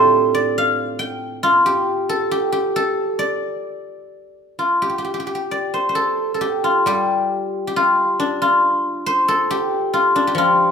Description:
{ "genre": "chinese traditional, Chinese solo plucked strings", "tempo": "68 BPM", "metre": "2/4", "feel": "rubato", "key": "D yu mode", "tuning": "A4 = 440 Hz", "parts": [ { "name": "guzheng", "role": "solo", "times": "0.0-10.7 s", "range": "A2 to G5", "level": "-16 LUFS", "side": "equal", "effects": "none" } ], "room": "moderate recital hall reverb, RT60 1.6 s", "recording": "minimal, uncompressed stereo recording", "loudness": "-16 LUFS", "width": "side -6 dB against mid", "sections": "0.0-5.0 A section; 5.0-10.7 B section", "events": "none", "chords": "none" }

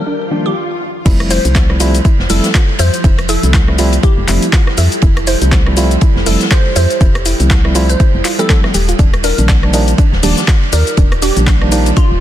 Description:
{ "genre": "deep house", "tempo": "121 BPM", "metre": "4/4", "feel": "swing 58% on 16ths", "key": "F major", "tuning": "A4 = 439 Hz", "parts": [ { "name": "glassy wavetable pluck", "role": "melody", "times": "0.0-12.2 s", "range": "F4 to C5", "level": "-21 LUFS", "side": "equal", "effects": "chorus, ping-pong delay" }, { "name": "deep dark ambient pad", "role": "sustained chords", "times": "0.1-12.2 s", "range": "F3 to D5", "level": "-24 LUFS", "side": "right 2 dB", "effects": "chorus, built-in reverb, sidechain pumping" }, { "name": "string machine, violins", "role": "texture", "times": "0.0-0.6 s", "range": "G4 to G5", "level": "-34 LUFS", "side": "left 1 dB", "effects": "ensemble chorus, sidechain pumping" }, { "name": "soft round pluck", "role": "arpeggios", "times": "0.1-12.1 s", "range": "D4 to E5", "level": "-24 LUFS", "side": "right 6 dB", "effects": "chorus, sidechain pumping, tape echo" }, { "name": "swell", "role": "sound effects", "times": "0.2-1.1 s", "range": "none", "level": "-23 LUFS", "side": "left 2 dB", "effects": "none" }, { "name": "tine electric piano", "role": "stabs", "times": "0.3-11.9 s", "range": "Eb3 to E4", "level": "-18 LUFS", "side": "equal", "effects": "medium tremolo, sidechain pumping, tape echo" }, { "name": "woody FM bass", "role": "bass", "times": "1.1-12.2 s", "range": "Eb1 to F2", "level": "-14 LUFS", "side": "equal", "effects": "tube saturation, sidechain pumping" }, { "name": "electronic kick drum", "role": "drums", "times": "1.1-12.1 s", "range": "none", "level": "-11 LUFS", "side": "equal", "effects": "overdrive, small room ambience" }, { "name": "open jazz drum kit", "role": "drums", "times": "1.1-12.1 s", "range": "hi-hat, ride cymbal, snare drum", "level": "-23 LUFS", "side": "right 2 dB", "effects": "sidechain pumping on cymbals, high-pass filter on cymbals, small room ambience, sidechain pumping on hats, high-pass filter on hats, high-pass filter on snare, high-pass filter on room" }, { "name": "punchy analog drum machine", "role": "drums", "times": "1.1-12.1 s", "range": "cabasa, crash cymbal, handclaps, hi-hat, rim click", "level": "-19 LUFS", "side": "left 3 dB", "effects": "overdrive, small room ambience" } ], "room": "digital ambience", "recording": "dense, heavily limited modern master", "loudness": "-9 LUFS", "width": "side -12 dB against mid", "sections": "0.0-1.1 A section; 1.1-12.2 B section", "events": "filter sweep on synth arpeggio sound 0.0-1.1; swell 0.2-1.1; stop 0.6-1.1; drop 1.1-12.2", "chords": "0.0 Ebmaj9; 1.1 Fmaj9; 8.7 Ebmaj9" }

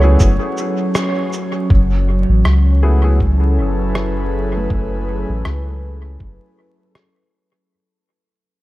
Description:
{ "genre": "ambient dub", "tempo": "80 BPM", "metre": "4/4", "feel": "swing 56% on 16ths", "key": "F# minor", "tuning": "A4 = 441 Hz", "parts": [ { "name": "airy breathy pad", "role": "sustained chords", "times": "0.0-7.7 s", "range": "F#3 to C#5", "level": "-22 LUFS", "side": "equal", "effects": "chorus" }, { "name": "felt-muted upright piano", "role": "arpeggios", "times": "0.0-7.7 s", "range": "A3 to C#5", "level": "-27 LUFS", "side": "right 5 dB", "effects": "low-pass filter, dub echo" }, { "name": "warm upright piano", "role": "stabs", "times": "0.0-3.2 s", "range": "A3 to G#4", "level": "-25 LUFS", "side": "left 2 dB", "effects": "dub echo" }, { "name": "soft dub sub bass", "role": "bass", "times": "0.0-6.4 s", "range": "F#1 to C#2", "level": "-15 LUFS", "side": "equal", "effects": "none" }, { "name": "electronic kick drum", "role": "drums", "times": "0.2-6.4 s", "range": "none", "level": "-15 LUFS", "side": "equal", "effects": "none" }, { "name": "electronic shaker and rim click", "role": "drums", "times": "0.2-7.1 s", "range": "none", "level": "-26 LUFS", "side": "equal", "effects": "dub echo" } ], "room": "light reverb, digital ambience", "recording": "dark, warm production, vinyl crackle", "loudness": "-14 LUFS", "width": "side -17 dB against mid", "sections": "0.0-1.7 A section; 1.7-7.7 B section", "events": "band accent 0.9-1.3; fade-out 1.7-7.7; filter sweep on felt piano 1.7-7.7", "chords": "0.0 F#m11" }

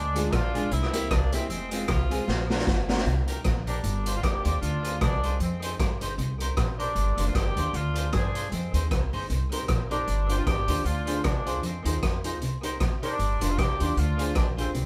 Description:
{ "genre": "ska", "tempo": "154 BPM", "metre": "4/4", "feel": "swing 57% on 8ths", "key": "C minor", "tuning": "A4 = 440 Hz", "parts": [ { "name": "clear horn section", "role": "melody", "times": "0.0-14.9 s", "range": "G3 to Ab4", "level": "-34 LUFS", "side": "equal", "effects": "none" }, { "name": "mellow electric guitar", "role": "riff", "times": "0.0-14.9 s", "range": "F2 to G3", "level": "-38 LUFS", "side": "equal", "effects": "none" }, { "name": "upright bass", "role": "bass", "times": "0.0-14.9 s", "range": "F1 to G2", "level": "-31 LUFS", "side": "equal", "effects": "none" }, { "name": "warm upright piano", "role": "stabs", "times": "0.1-3.0, 9.5-14.7 s", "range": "Ab3 to C5", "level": "-36 LUFS", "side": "equal", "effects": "none" }, { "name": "clean electric guitar", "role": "accompaniment", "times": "0.2-14.7 s", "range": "Bb3 to C5", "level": "-39 LUFS", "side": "equal", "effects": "tape echo" }, { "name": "raw garage drum kit", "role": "drums", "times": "0.2-14.8 s", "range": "hi-hat, kick drum, rim click, snare drum", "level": "-31 LUFS", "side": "equal", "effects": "none" } ], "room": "moderate small room reverb, RT60 0.5 s", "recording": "band playing live in one room", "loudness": "-27 LUFS", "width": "mono", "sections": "0.0-3.1 A section; 3.1-14.9 B section", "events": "drum fill 2.3-3.1", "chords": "0.0 Ddim; 0.7 C7; 1.5 Fm; 2.3 Bb; 3.1 Cm7; 3.8 G7sus4; 4.6 Dm7b5; 5.4 Fm7; 6.2 Cm7; 7.0 G7sus4; 7.7 Dm7b5; 8.5 Fm7; 9.3 Cm7; 10.1 G7sus4; 10.9 Dm7b5; 11.6 Fm7; 12.4 Cm7; 13.2 G7sus4; 14.0 Dm7b5" }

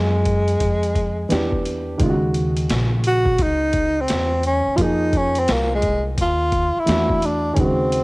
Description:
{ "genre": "hip hop, jazz-hop", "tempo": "86 BPM", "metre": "4/4", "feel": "swing 65% on 16ths", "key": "Eb dorian", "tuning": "A4 = 438 Hz", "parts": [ { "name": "breathy tenor saxophone", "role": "melody", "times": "0.0-8.0 s", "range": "Ab3 to Gb4", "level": "-20 LUFS", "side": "equal", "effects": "cassette tape" }, { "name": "dark upright piano", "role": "accompaniment", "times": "0.0-8.0 s", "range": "Db3 to Ab4", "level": "-23 LUFS", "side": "right 1 dB", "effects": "cassette tape" }, { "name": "upright bass", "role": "bass", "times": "0.0-8.0 s", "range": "Bb1 to Gb2", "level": "-23 LUFS", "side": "equal", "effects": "none" }, { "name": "boom bap sampler-style drum kit", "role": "drums", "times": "0.3-8.0 s", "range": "hi-hat, kick drum, snare drum", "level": "-24 LUFS", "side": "equal", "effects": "none" } ], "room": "small room ambience", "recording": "home recording on cassette", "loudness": "-17 LUFS", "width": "side -24 dB against mid", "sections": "0.0-2.0 A section; 2.0-8.0 B section", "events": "tenor saxophone solo 2.0-8.0", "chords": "0.0 Fm7; 1.3 Em7; 2.0 Ebm7; 4.8 Fm7; 6.9 E9sus4" }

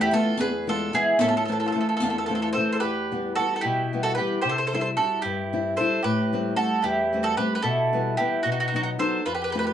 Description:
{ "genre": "italian folk, Italian serenade", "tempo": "74 BPM (dotted quarters)", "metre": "6/8", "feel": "straight", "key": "E minor", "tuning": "A4 = 440 Hz", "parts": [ { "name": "bowl-back mandolin", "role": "melody", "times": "0.0-9.7 s", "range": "F#4 to C5", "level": "-26 LUFS", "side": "right 2 dB", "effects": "none" }, { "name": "mandolin", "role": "second line", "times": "0.0-9.7 s", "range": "D#4 to A4", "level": "-28 LUFS", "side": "right 2 dB", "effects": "none" }, { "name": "nylon-string guitar", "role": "accompaniment", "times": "0.0-9.7 s", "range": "E2 to F4", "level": "-26 LUFS", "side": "left 3 dB", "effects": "none" }, { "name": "riq", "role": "percussion", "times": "0.1-2.3 s", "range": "none", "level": "-29 LUFS", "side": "left 1 dB", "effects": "none" } ], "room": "wet studio reverb, RT60 0.5 s", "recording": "band playing live in one room, nothing above 10.9 kHz", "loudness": "-22 LUFS", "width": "side -10 dB against mid", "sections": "0.0-2.8 A section; 2.8-9.7 B section", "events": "none", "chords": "0.4 E; 1.2 Am; 2.8 Em; 4.4 C; 6.0 Am7; 7.6 Em/B; 8.4 B" }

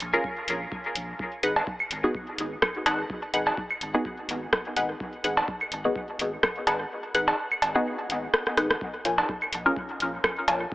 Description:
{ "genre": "dub techno", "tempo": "126 BPM", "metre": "4/4", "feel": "swing 55% on 16ths", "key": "unclear", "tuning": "A4 = 440 Hz", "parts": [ { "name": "soft dub sub bass", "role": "bass", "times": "0.0-10.7 s", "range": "Ab1 to Bb1", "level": "-41 LUFS", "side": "equal", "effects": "sidechain pumping" }, { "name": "booming analog drum machine", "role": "drums", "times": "0.0-10.6 s", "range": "hi-hat, rim click", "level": "-27 LUFS", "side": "equal", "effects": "dub echo" }, { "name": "filtered dub chord stab", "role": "stabs", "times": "0.1-9.7 s", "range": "Cb4 to Bb4", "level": "-30 LUFS", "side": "equal", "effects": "phaser, vintage 12-bit sampler grit, dub echo" }, { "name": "electronic kick drum", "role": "drums", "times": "0.2-10.7 s", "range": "none", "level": "-38 LUFS", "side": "equal", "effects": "none" }, { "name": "filtered dub chord stab", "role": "riff", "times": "1.4-10.6 s", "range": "Eb4 to Ab5", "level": "-30 LUFS", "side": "left 1 dB", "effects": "phaser, sidechain pumping, dub echo" }, { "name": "cowbell and claves", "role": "percussion", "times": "1.6-10.6 s", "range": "none", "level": "-28 LUFS", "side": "right 1 dB", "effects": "sidechain pumping on perc, dub echo" } ], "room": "moderate huge ambient reverb, RT60 4.3 s", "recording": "AM radio sound", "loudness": "-25 LUFS", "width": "side -17 dB against mid", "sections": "0.0-10.7 A section", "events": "kick drops out 6.9-8.8; drum fill 8.5-8.8", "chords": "0.0 Bbm7; 1.2 Abm7; 8.8 Bbm7" }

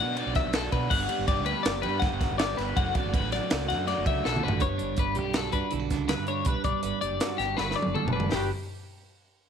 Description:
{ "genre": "math rock and midwest emo", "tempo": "162 BPM", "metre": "5/4", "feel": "straight", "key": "G lydian", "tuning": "A4 = 437 Hz", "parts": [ { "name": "twelve-string electric guitar", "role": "arpeggios", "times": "0.0-8.5 s", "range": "G4 to F#5", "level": "-30 LUFS", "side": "left 10 dB", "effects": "slapback echo" }, { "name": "overdriven electric guitar", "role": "riff", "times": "0.0-4.6 s", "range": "B2 to G4", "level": "-33 LUFS", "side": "right 12 dB", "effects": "none" }, { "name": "fuzz fingered electric bass", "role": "bass", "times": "0.0-8.5 s", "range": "F#1 to B2", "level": "-33 LUFS", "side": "right 1 dB", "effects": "overdrive" }, { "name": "crisp fusion drum kit", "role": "drums", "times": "0.2-8.4 s", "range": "crash cymbal, hi-hat, kick drum, ride cymbal, snare drum, toms", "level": "-29 LUFS", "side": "right 1 dB", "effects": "none" }, { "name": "twelve-string electric guitar", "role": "accompaniment", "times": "4.6-8.5 s", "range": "G2 to D5", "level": "-32 LUFS", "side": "right 13 dB", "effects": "phaser" } ], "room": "light reverb, studio reverb", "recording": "1960s-style stereo with parts hard left and right", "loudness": "-25 LUFS", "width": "side -7 dB against mid", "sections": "0.0-4.6 A section; 4.6-8.3 B section; 8.3-9.5 C section", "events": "drum fill 4.2-4.6, 7.6-8.3", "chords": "0.0 Bm7; 0.9 Gmaj7; 2.8 Dmaj7/F#; 4.6 Gmaj7" }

